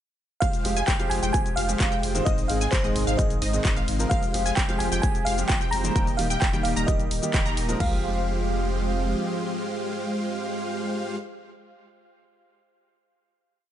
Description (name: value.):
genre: EDM, festival progressive house.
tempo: 130 BPM.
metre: 4/4.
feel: straight.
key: F minor.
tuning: A4 = 441 Hz.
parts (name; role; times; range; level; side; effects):
bell-like FM electric piano; melody; 0.4-11.2 s; C5 to Bb5; -30 LUFS; right 1 dB; chorus, tape echo.
lush unison pad; sustained chords; 1.2-11.2 s; C3 to G4; -35 LUFS; right 1 dB; chorus, phaser, sidechain pumping.
wide unison pluck; arpeggios; 0.4-11.2 s; Eb5 to Bb5; -35 LUFS; right 1 dB; sidechain pumping, tape echo.
dense compressed supersaw; riff; 0.4-11.2 s; Ab3 to Bb5; -31 LUFS; right 1 dB; sidechain pumping, tape echo.
saturated sub bass; bass; 0.4-9.1 s; Eb1 to Ab1; -30 LUFS; equal; sidechain pumping.
big-room dance drum kit; drums; 0.4-7.9 s; crash cymbal, kick drum, toms; -25 LUFS; equal; none.
big-room dance drum kit; drums; 0.4-7.8 s; handclaps, hi-hat, shaker; -30 LUFS; left 1 dB; none.
clear concert grand piano; accompaniment; 0.6-11.2 s; Ab2 to C5; -32 LUFS; left 1 dB; sidechain pumping, tape echo.
room: digital ambience.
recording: nothing above 10.8 kHz.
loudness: -22 LUFS.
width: side -11 dB against mid.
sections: 0.4-7.8 drop; 7.8-11.5 final chord.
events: drop 0.4-7.8; band accent 7.3.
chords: 0.4 Fmadd9; 2.3 Ab; 4.1 Fmadd9; 6.0 Eb; 7.8 Fmadd9.